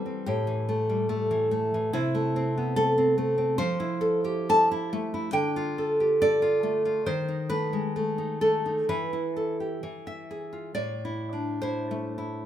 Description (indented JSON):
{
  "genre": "romantic piece for solo classical guitar",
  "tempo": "63-73 BPM",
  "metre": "2/4",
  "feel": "rubato",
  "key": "A minor from 3.6 s",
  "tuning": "A4 = 438 Hz",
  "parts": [
    { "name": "nylon-string guitar", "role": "solo", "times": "0.0-12.5 s", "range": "A2 to A5", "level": "-24 LUFS", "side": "equal", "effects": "none" }
  ],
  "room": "moderate recital hall reverb, RT60 1.6 s",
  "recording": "minimal, uncompressed stereo recording",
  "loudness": "-24 LUFS",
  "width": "side -10 dB against mid",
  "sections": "0.0-10.7 A section; 10.7-12.5 B section",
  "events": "none",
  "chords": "0.3 A5; 1.9 Am/C; 3.6 Fmaj7; 5.4 Dm; 7.1 B13b9/D#; 8.9 Esus4; 9.8 E; 10.7 Am"
}